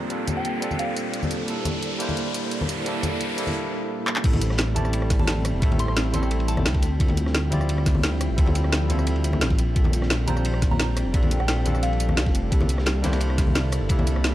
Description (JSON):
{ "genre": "liquid drum and bass", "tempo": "174 BPM", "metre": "4/4", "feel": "straight", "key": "Bb lydian", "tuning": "A4 = 440 Hz", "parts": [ { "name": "barky tine electric piano", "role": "accompaniment", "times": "0.0-14.3 s", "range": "G3 to D5", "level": "-30 LUFS", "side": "equal", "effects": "none" }, { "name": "ethereal airy pad", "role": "sustained chords", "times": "0.0-14.3 s", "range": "F3 to G5", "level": "-33 LUFS", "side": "right 1 dB", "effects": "ensemble chorus, built-in reverb, tremolo, sidechain pumping" }, { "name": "riser", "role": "sound effects", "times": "0.0-3.6 s", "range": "none", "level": "-31 LUFS", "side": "equal", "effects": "none" }, { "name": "drum and bass drum kit", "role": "drums", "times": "0.1-14.3 s", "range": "crash cymbal, handclaps, hi-hat, rim click, snare drum, tambourine", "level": "-28 LUFS", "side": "equal", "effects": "overdrive" }, { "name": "congas", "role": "percussion", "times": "0.3-14.1 s", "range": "none", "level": "-30 LUFS", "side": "left 2 dB", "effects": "none" }, { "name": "soft synth bell", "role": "melody", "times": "0.4-1.1, 4.8-6.8, 10.3-12.2 s", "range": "F5 to C6", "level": "-34 LUFS", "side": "equal", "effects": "chorus, phaser, low-pass filter, dub echo" }, { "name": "dark detuned saw bass", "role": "bass", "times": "4.2-14.3 s", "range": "E1 to D2", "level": "-24 LUFS", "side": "equal", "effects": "none" }, { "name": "crunchy breakbeat drum kit", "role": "drums", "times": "4.2-14.3 s", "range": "hi-hat, ride cymbal, snare drum", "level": "-35 LUFS", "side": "equal", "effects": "high-pass filter on cymbals, high-pass filter on hats, high-pass filter on snare, high-pass filter on room" }, { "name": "electronic kick drum", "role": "drums", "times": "4.2-14.0 s", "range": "none", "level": "-21 LUFS", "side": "equal", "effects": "overdrive" } ], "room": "small room reverb", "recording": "dark, warm production", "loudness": "-20 LUFS", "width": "side -14 dB against mid", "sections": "0.0-4.2 A section; 4.2-14.3 B section", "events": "build-up 0.0-4.2; riser 0.0-3.6; drum fill 4.1; drop 4.2-14.3", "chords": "0.0 Bbmaj13; 1.5 C13; 4.2 Am7; 6.8 Dm11; 9.6 Bbmaj13; 12.5 C13", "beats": "| 0.11 0.45 0.80 1.14 | 1.49 1.83 2.17 2.52 | 2.86 3.21 3.55 3.90 | 4.24 4.59 4.93 5.28 | 5.62 5.97 6.31 6.66 | 7.00 7.35 7.69 8.04 | 8.38 8.73 9.07 9.42 | 9.76 10.11 10.45 10.79 | 11.14 11.48 11.83 12.18 | 12.52 12.86 13.21 13.55 | 13.90 14.24" }